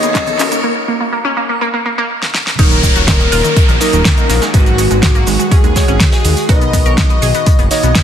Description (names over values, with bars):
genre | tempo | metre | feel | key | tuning
progressive house | 123 BPM | 4/4 | straight | Eb minor | A4 = 440 Hz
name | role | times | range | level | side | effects
soft octave-layered synth lead | melody | 0.0-8.0 s | Gb4 to D#5 | -20 LUFS | left 3 dB | chorus, sidechain pumping, tape echo
evolving wavetable pad | sustained chords | 0.0-8.0 s | A#2 to Gb4 | -25 LUFS | right 1 dB | phaser, built-in reverb, sidechain pumping
glassy wavetable pluck | arpeggios | 0.0-8.0 s | Eb3 to A#4 | -19 LUFS | equal | chorus, sidechain pumping, tape echo
deep mellow chord stab | stabs | 0.0-8.0 s | Gb3 to Eb5 | -22 LUFS | right 3 dB | wide subtle chorus, sidechain pumping, tape echo
fat analog bass | bass | 0.0-7.9 s | Eb1 to Eb2 | -16 LUFS | equal | sidechain pumping, high-pass filter
pop drum kit | drums | 0.0-8.0 s | crash cymbal, handclaps, hi-hat, shaker, snare drum | -17 LUFS | equal | soft clipping on snare, sidechain pumping on hats, sidechain pumping on perc, sidechain pumping on cymbals
riser and downlifter | sound effects | 0.0-6.5 s | none | -20 LUFS | left 1 dB | none
backwards swelling texture | texture | 0.0-8.0 s | Db6 | -32 LUFS | left 1 dB | none
electronic kick drum | drums | 0.1-8.0 s | none | -12 LUFS | equal | none
congas and bongos | percussion | 0.3-0.6 s | none | -36 LUFS | right 4 dB | none
soft supersaw | second line | 2.6-8.0 s | Gb4 to D#5 | -24 LUFS | equal | sidechain pumping, tape echo
vintage brush drum kit | drums | 2.6-8.0 s | hi-hat, snare drum | -26 LUFS | equal | none
room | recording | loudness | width
light reverb, digital ambience | dense, heavily limited modern master, high-pass filter | -10 LUFS | side -9 dB against mid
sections
0.0-2.6 A section; 2.6-8.0 B section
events
build-up 0.0-2.6; drum fill 0.0-0.6, 2.2-2.6; riser 0.0-0.6; filter sweep on synth arpeggio sound 0.0-2.6; filter sweep 0.0-2.6; break 0.6-2.6; drop 2.6-8.0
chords
0.0 Bmaj7; 0.6 N.C.; 2.6 Ebm7; 4.5 Abm7; 6.5 Bmaj7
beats
0.15 | 0.64 1.12 1.61 2.10 | 2.59 3.08 3.56 4.05 | 4.54 5.03 5.51 6.00 | 6.49 6.98 7.47 7.95